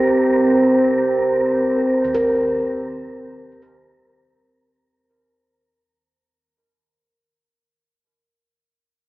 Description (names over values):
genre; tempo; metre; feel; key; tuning
dark ambient drone; free time; none; none; C minor; A4 = 437 Hz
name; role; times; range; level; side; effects
dark analog pad; sustained chords; 0.0-4.7 s; C4 to C5; -16 LUFS; right 1 dB; wide subtle chorus
deep rumbling drone; drone; 0.0-4.8 s; C2 to C3; -50 LUFS; equal; built-in reverb, phaser, lush chorus
wind-like tuned noise texture; texture; 0.0-4.7 s; Bb4; -26 LUFS; equal; built-in reverb
gamelan-type bossed gongs; arpeggios; 2.0-8.0 s; Eb2 to Bb4; -22 LUFS; equal; none
room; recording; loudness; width
wet cathedral reverb, RT60 5.0 s; small speaker sound; -15 LUFS; side -18 dB against mid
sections
0.0-4.7 A section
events
fade-out 0.0-4.7; filter sweep on synth drone 0.0-4.7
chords
0.0 C5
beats
free time